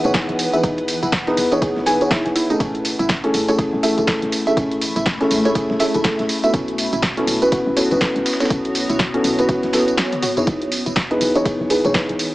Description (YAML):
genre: deep house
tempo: 122 BPM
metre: 4/4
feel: swing 59% on 16ths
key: E major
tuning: A4 = 440 Hz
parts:
  - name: felt-muted upright piano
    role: stabs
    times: 0.0-12.3 s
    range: A3 to C#5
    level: -19 LUFS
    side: equal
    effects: vintage 12-bit sampler grit, sidechain pumping, digital delay
  - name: woody FM bass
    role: bass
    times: 0.0-12.2 s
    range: E1 to B1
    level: -30 LUFS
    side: equal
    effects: sidechain pumping
  - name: punchy analog drum machine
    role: drums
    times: 0.0-12.3 s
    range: hi-hat, snare drum, tambourine, toms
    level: -23 LUFS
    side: equal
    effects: none
  - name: granular cloud pad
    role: texture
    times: 0.0-12.3 s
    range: E3 to B5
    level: -27 LUFS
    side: equal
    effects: built-in reverb, sidechain pumping
  - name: warbly dusty pluck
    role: arpeggios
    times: 0.1-12.0 s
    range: C#4 to G#5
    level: -24 LUFS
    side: right 2 dB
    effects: chorus, sidechain pumping, dub echo
  - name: dusty soul sampler-style drum kit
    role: drums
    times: 0.1-12.3 s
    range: hi-hat, ride cymbal, snare drum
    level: -33 LUFS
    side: right 1 dB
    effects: sidechain pumping on cymbals, high-pass filter on cymbals, high-pass filter on snare, sidechain pumping on hats, high-pass filter on hats
  - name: electronic kick drum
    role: drums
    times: 0.1-12.1 s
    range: none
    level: -25 LUFS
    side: equal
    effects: none
room: light reverb, digital ambience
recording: small speaker sound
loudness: -16 LUFS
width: side -18 dB against mid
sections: 0.0-12.3 A section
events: drum fill 10.1-10.5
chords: 0.0 Emaj7; 2.6 Amaj7; 6.5 B9sus4; 10.5 Emaj7